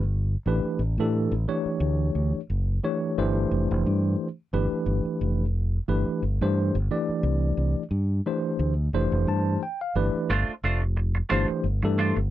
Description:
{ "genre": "jazz", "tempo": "88 BPM", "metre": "4/4", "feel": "swing 56% on 16ths", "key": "G mixolydian", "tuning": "A4 = 442 Hz", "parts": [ { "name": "tine electric piano", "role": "accompaniment", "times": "0.0-12.2 s", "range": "E3 to A5", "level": "-26 LUFS", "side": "equal", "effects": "medium stereo tremolo" }, { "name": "fingered electric bass", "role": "bass", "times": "0.0-12.3 s", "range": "F1 to A2", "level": "-24 LUFS", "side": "equal", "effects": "none" }, { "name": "semi-hollow electric guitar", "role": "stabs", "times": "10.3-12.2 s", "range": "A3 to C5", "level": "-28 LUFS", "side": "right 4 dB", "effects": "lush chorus" } ], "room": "light reverb", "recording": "dry, close 1970s-style studio recording", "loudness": "-23 LUFS", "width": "side -13 dB against mid", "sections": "0.0-10.3 A section; 10.3-12.3 A section", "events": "tine electric piano fill 8.9-10.3", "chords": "0.0 A7sus4; 3.2 G9sus4", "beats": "0.13 0.81 1.48 | 2.16 2.84 3.52 4.20 | 4.88 5.55 6.23 6.91 | 7.59 8.27 8.94 9.62 | 10.30 10.97 11.65" }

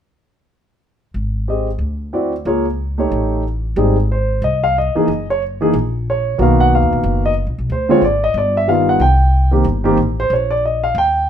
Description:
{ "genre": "jazz piano trio", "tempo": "184 BPM", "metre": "4/4", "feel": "swing 61% on 8ths", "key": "unclear", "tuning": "A4 = 440 Hz", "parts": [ { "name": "upright bass", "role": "bass", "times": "1.1-11.3 s", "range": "Gb1 to D#2", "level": "-18 LUFS", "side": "equal", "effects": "none" }, { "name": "warm concert grand piano", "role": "melody", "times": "1.5-11.3 s", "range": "D3 to G5", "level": "-15 LUFS", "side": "equal", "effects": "none" } ], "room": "light reverb", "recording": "minimal, uncompressed stereo recording", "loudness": "-14 LUFS", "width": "side -9 dB against mid", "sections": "1.2-3.8 A section; 3.8-11.3 B section", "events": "none", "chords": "1.2 Abmaj7; 1.8 D9; 2.5 Db6; 3.1 A7#11; 3.8 Ab; 5.1 Gb6; 6.4 Bmaj7; 7.7 D7(b5, no3); 8.3 G7b13; 9.0 C5; 10.3 Bbmadd11", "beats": "| 1.15 1.48 1.81 2.14 | 2.46 2.79 3.12 3.45 | 3.77 4.10 4.43 4.75 | 5.08 5.41 5.73 6.06 | 6.39 6.71 7.04 7.37 | 7.69 8.02 8.35 8.67 | 9.00 9.32 9.65 9.98 | 10.30 10.63 10.95 11.28" }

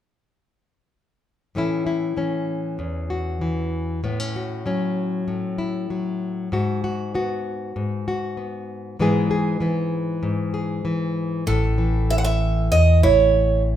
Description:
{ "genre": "folk", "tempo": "97 BPM", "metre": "4/4", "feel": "straight", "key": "unclear", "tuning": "A4 = 441 Hz", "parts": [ { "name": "nylon-string guitar", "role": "accompaniment", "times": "1.6-13.8 s", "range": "E2 to G#4", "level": "-23 LUFS", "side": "left 2 dB", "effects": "none" }, { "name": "picked acoustic archtop guitar", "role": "melody", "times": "11.5-13.6 s", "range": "A4 to F#5", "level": "-20 LUFS", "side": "right 5 dB", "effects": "none" }, { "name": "fingered electric bass", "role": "bass", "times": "11.5-13.8 s", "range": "A1 to E2", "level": "-19 LUFS", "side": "equal", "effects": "none" } ], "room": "moderate recital hall reverb, RT60 1.3 s", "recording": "minimal, uncompressed stereo recording", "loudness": "-20 LUFS", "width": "side -10 dB against mid", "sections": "1.6-11.5 A section; 11.5-13.8 B section", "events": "none", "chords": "1.6 A; 4.0 F#m/A; 6.5 G#m7; 9.0 E/G#; 11.5 A", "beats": "| 1.55 2.18 2.80 3.42 | 4.04 4.66 5.28 5.90 | 6.52 7.14 7.76 8.38 | 9.00 9.62 10.24 10.86 | 11.48 12.10 12.72 13.34" }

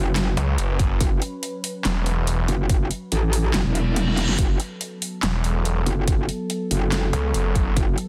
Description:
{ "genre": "heavy wobble dubstep", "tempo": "142 BPM", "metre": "4/4", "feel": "swing 53% on 16ths, half-time", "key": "F# minor", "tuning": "A4 = 438 Hz", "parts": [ { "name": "evolving wavetable pad", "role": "sustained chords", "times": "0.0-8.1 s", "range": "F#3 to B4", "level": "-34 LUFS", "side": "equal", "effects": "phaser, built-in reverb, sidechain pumping" }, { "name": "metallic wobble bass", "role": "bass", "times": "0.0-8.0 s", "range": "E1 to A1", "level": "-24 LUFS", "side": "equal", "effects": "chorus, overdrive" }, { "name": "dubstep drum kit", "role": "drums", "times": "0.2-8.1 s", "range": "handclaps, hi-hat, snare drum, toms", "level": "-30 LUFS", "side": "equal", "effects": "studio ambience" }, { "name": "snarling distorted saw bass", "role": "bass", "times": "0.4-2.5, 5.2-7.8 s", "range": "E1 to C#2", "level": "-24 LUFS", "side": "equal", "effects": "distortion, overdrive" }, { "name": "electronic kick drum", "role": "drums", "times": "0.8-7.9 s", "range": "none", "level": "-24 LUFS", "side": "equal", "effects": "studio ambience" }, { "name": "reverse cymbal", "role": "sound effects", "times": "3.7-4.4 s", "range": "none", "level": "-32 LUFS", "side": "equal", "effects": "none" } ], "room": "digital ambience", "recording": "dense, heavily limited modern master", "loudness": "-23 LUFS", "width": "mono", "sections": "0.0-8.1 A section", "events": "reverse cymbal 3.7-4.4; kick drops out 4.0-4.4; drum fill 4.0-4.4", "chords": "0.0 F#m", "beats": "0.16 0.58 | 1.01 1.43 1.85 2.27 | 2.70 3.12 3.54 3.96 | 4.39 4.81 5.23 5.65 | 6.08 6.50 6.92 7.34 | 7.77" }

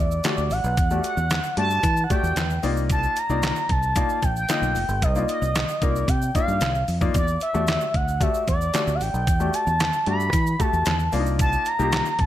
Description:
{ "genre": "early-eighties boogie funk", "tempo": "113 BPM", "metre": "4/4", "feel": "straight", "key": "unclear", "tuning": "A4 = 436 Hz", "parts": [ { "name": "expressive synth lead", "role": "melody", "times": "0.0-12.3 s", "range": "D5 to B5", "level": "-25 LUFS", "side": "equal", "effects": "chorus, slapback echo" }, { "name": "fingered electric bass", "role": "bass", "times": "0.0-12.3 s", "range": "F1 to E3", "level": "-25 LUFS", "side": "equal", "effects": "none" }, { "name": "egg shaker", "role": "percussion", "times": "0.1-12.2 s", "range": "none", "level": "-41 LUFS", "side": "right 9 dB", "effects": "none" }, { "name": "warm baby grand piano", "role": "accompaniment", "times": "0.2-12.1 s", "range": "A3 to Eb5", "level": "-29 LUFS", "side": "left 5 dB", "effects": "none" }, { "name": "detuned 8-bit digital drum machine", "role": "drums", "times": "0.2-12.3 s", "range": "handclaps, hi-hat, kick drum, snare drum", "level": "-25 LUFS", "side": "equal", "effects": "none" } ], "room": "light reverb, digital ambience", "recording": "none", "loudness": "-20 LUFS", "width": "side -12 dB against mid", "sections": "0.0-12.3 A section", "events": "none", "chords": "0.0 Em11; 2.6 Cm11; 7.1 Em11; 11.1 Cm11", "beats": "0.24 | 0.77 1.30 1.84 2.37 | 2.90 3.43 3.96 4.49 | 5.02 5.55 6.08 6.62 | 7.15 7.68 8.21 8.74 | 9.27 9.80 10.33 10.86 | 11.39 11.93" }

